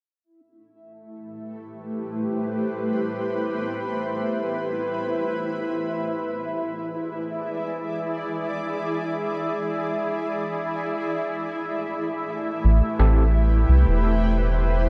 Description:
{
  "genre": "ambient",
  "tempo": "free time",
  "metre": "none",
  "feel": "none",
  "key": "A minor",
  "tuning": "A4 = 440 Hz",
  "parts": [
    { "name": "granular cloud pad", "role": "sustained chords", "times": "1.1-14.9 s", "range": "A3 to D5", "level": "-29 LUFS", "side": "equal", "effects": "built-in reverb" },
    { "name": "bubbling stepped-filter texture", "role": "texture", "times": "0.8-14.9 s", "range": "E4 to E5", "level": "-35 LUFS", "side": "equal", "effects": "chorus, built-in reverb" },
    { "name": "round analog bass", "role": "bass", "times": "12.6-14.9 s", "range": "E1 to C2", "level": "-20 LUFS", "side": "equal", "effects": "none" },
    { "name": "overdriven tine electric piano", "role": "stabs", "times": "13.0-13.2 s", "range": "C4 to A4", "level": "-34 LUFS", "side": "equal", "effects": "medium tremolo, vintage 12-bit sampler grit, dub echo" }
  ],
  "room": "moderate huge ambient reverb, RT60 6.5 s",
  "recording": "none",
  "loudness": "-25 LUFS",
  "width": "mono",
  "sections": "0.2-14.9 A section",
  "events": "none",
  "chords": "0.2 Am7; 5.8 E7; 11.3 Am7"
}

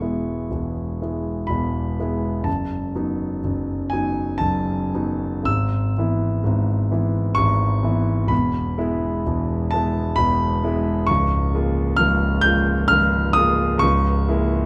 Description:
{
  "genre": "classical, romantic nocturne for solo piano",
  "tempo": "54-67 BPM",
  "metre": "3/4",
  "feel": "rubato",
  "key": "E major",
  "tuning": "A4 = 439 Hz",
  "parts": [
    { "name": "warm concert grand piano", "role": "solo", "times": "0.0-14.7 s", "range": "Db1 to G6", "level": "-21 LUFS", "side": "equal", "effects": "none" }
  ],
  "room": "moderate recital hall reverb, RT60 1.5 s",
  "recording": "none",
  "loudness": "-21 LUFS",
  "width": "mono",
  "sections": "0.0-14.7 A section",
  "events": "none",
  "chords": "0.0 E; 2.5 B7/F#; 5.5 E/G#; 8.3 E; 11.1 Bbm7/Db; 13.8 Bbm7b5/Db"
}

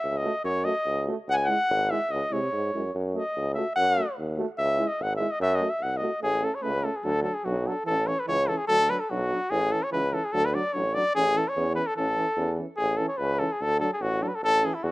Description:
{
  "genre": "balkan folk, Balkan brass band",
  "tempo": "146 BPM",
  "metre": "2/4",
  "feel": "swing 56% on 16ths",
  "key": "F# dorian sharp4, A major from 6.2 s",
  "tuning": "A4 = 440 Hz",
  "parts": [
    { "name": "warm cornet", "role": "melody", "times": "0.0-14.9 s", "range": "E4 to G#5", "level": "-25 LUFS", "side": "left 1 dB", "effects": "none" },
    { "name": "clear tuba", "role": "bass", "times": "0.0-14.9 s", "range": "G#1 to B#2", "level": "-29 LUFS", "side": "equal", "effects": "none" },
    { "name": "clear trombone", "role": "accompaniment", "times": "0.2-14.7 s", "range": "E3 to A3", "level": "-36 LUFS", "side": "right 4 dB", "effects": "none" },
    { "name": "warm euphonium", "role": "accompaniment", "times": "0.2-14.7 s", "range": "C#4 to F#4", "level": "-36 LUFS", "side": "left 2 dB", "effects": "none" }
  ],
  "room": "light reverb, small room ambience",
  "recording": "rough home demo mix",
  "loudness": "-24 LUFS",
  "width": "side -19 dB against mid",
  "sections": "0.0-6.2 A section; 6.2-12.8 B section; 12.8-14.9 B section",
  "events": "cornet solo 0.0-6.2",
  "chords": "0.0 F#m; 1.3 C#m; 2.9 F#m; 4.6 C#m; 5.4 F#m; 6.2 A; 7.1 D; 7.9 A; 8.7 D; 9.5 A; 10.3 D; 11.2 A; 13.6 D"
}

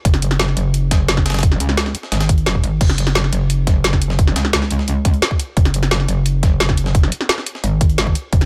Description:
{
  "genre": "dark technical drum and bass",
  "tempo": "174 BPM",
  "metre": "4/4",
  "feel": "straight",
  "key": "unclear",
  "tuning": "A4 = 438 Hz",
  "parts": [
    { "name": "metallic wobble bass", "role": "bass", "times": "0.1-8.5 s", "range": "F#1 to C#2", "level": "-20 LUFS", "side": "equal", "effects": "distortion, chorus, overdrive, sidechain pumping" },
    { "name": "breakbeat sampler-style drum kit", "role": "drums", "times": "0.1-8.5 s", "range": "hi-hat, snare drum", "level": "-30 LUFS", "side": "equal", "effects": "high-pass filter on hats, high-pass filter on snare" },
    { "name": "drum and bass drum kit", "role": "drums", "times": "0.1-8.5 s", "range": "crash cymbal, hi-hat, snare drum", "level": "-22 LUFS", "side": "equal", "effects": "none" },
    { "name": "electronic kick drum", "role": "drums", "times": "0.1-8.4 s", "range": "none", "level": "-17 LUFS", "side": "equal", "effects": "none" }
  ],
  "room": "little or no reverb",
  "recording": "none",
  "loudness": "-17 LUFS",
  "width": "mono",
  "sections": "0.0-8.5 A section",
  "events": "none",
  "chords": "none"
}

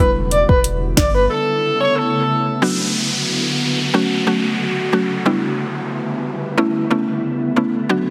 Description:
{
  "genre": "dancehall",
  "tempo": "91 BPM",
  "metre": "4/4",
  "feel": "straight",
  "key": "B minor",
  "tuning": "A4 = 441 Hz",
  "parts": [
    { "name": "breathy flute-like synth lead", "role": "melody", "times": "0.0-1.3 s", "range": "B4 to D5", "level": "-20 LUFS", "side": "equal", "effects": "chorus, digital delay" },
    { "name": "mallet-like synth pluck", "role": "accompaniment", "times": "0.0-8.1 s", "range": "F#3 to F#4", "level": "-21 LUFS", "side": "equal", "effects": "chorus, sidechain pumping" },
    { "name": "glassy FM pad", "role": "sustained chords", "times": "0.2-8.1 s", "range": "C#3 to F#4", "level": "-25 LUFS", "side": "equal", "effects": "ensemble chorus, built-in reverb, sidechain pumping" },
    { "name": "warm sub bass", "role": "bass", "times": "0.0-1.3 s", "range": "E1 to G1", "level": "-24 LUFS", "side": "equal", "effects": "none" },
    { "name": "afro-pop drum kit", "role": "drums", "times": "0.3-1.1 s", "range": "hi-hat, kick drum, snare drum", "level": "-18 LUFS", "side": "equal", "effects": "none" },
    { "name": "warm horn section", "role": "second line", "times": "1.3-2.6 s", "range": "A4 to C#5", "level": "-21 LUFS", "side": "equal", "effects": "digital delay" },
    { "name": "downlifter", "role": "sound effects", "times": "2.6-7.9 s", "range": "none", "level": "-25 LUFS", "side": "equal", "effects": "none" }
  ],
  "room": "moderate lush hall reverb, RT60 2.5 s",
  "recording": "heavily compressed radio sound",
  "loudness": "-18 LUFS",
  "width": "mono",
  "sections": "0.0-2.6 A section; 2.6-8.1 B section",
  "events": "break 1.3-2.6",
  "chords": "0.0 Em7; 1.3 Aadd9; 2.6 Bm; 3.9 F#m; 5.3 Em7; 6.6 Aadd9"
}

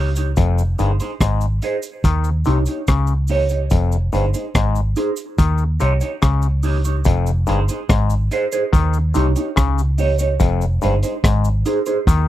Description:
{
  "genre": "roots reggae",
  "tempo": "72 BPM",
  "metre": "4/4",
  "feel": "straight",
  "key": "F minor",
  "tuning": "A4 = 438 Hz",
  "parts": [
    { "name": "mellow electric guitar", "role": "accompaniment", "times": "0.0-12.0 s", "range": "Eb4 to Db5", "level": "-23 LUFS", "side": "right 3 dB", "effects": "phaser, tape echo" },
    { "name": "vintage muted fingered electric bass", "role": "bass", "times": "0.0-12.3 s", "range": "F1 to Eb2", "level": "-18 LUFS", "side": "equal", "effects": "none" },
    { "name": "crunchy breakbeat drum kit", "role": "drums", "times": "0.2-12.3 s", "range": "hi-hat, kick drum, rim click", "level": "-18 LUFS", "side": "equal", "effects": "none" },
    { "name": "cabasa", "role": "percussion", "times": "0.2-12.3 s", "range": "none", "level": "-36 LUFS", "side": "right 7 dB", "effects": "none" },
    { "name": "overdriven clav", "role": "riff", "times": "0.4-12.3 s", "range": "F2 to Eb3", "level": "-22 LUFS", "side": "left 7 dB", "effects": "none" }
  ],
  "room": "little or no reverb",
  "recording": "dry, close 1970s-style studio recording",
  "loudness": "-16 LUFS",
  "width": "side -13 dB against mid",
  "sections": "0.0-7.1 A section; 7.1-12.3 B section",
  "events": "none",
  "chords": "0.4 Fm7; 2.0 Eb7; 3.7 Fm7; 5.4 Eb7; 7.1 Fm7; 8.7 Eb7; 10.4 Fm7"
}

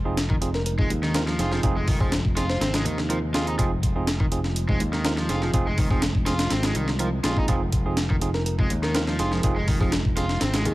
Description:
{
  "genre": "breakbeat, breaks",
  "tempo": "123 BPM",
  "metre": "4/4",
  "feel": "straight",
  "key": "F minor",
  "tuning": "A4 = 440 Hz",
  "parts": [
    { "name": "warbly tape-like pad", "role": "sustained chords", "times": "0.0-10.7 s", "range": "C3 to F4", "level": "-35 LUFS", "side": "right 2 dB", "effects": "none" },
    { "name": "modern bright fingered electric bass", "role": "bass", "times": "0.0-10.7 s", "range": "F1 to Eb2", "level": "-26 LUFS", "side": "equal", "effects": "tube saturation" },
    { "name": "bright tine electric piano", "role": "stabs", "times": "0.1-10.7 s", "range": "C4 to Bb4", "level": "-31 LUFS", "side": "right 4 dB", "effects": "vintage 12-bit sampler grit, tape echo" },
    { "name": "breakbeat sampler-style drum kit", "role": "drums", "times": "0.2-10.7 s", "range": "hi-hat, kick drum, snare drum", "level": "-25 LUFS", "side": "equal", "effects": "none" },
    { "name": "overdriven semi-hollow guitar", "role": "riff", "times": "0.3-10.7 s", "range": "Eb3 to F4", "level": "-30 LUFS", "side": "equal", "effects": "tape echo" },
    { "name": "bell-like FM electric piano", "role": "melody", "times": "0.5-2.9, 8.3-10.7 s", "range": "Ab4 to C5", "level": "-35 LUFS", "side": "left 1 dB", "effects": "chorus, AM radio sound, tape echo" }
  ],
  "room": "digital ambience",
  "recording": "none",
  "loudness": "-21 LUFS",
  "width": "side -18 dB against mid",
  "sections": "0.0-10.7 A section",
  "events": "none",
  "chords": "0.0 Fm7"
}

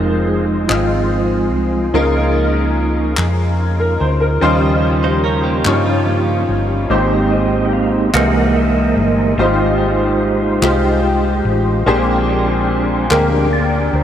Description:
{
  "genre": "slow gospel",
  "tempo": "48 BPM (dotted quarters)",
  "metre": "6/8",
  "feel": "straight",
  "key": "unclear",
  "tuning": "A4 = 437 Hz",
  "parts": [
    { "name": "bright upright piano", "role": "accompaniment", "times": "0.0-14.0 s", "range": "Ab2 to Db5", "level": "-17 LUFS", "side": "left 2 dB", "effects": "ensemble chorus" },
    { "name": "percussive tonewheel organ", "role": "sustained chords", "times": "0.0-14.0 s", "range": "Db3 to G5", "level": "-18 LUFS", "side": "right 2 dB", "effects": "fast rotary speaker" },
    { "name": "hollow-body short-scale fingered electric bass", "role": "bass", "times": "0.0-14.0 s", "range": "F1 to G2", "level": "-18 LUFS", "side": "equal", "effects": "none" },
    { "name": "group handclap", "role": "percussion", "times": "0.7-13.5 s", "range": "none", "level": "-26 LUFS", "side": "left 2 dB", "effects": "none" },
    { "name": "direct-recorded clean electric guitar", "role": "second line", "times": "5.0-6.9 s", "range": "Bb3 to C5", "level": "-25 LUFS", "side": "right 5 dB", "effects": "lush chorus" }
  ],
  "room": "moderate huge ambient reverb, RT60 7.8 s",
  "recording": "dreamy mix soaked in reverb",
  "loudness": "-13 LUFS",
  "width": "side -10 dB against mid",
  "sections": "0.0-14.0 A section",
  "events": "tonewheel organ solo 0.0-14.0",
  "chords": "0.0 Fm7; 1.9 Db69; 4.4 Eb13; 6.9 Abmaj7; 8.1 C7alt; 9.4 Fm9/Ab; 11.9 Bb13"
}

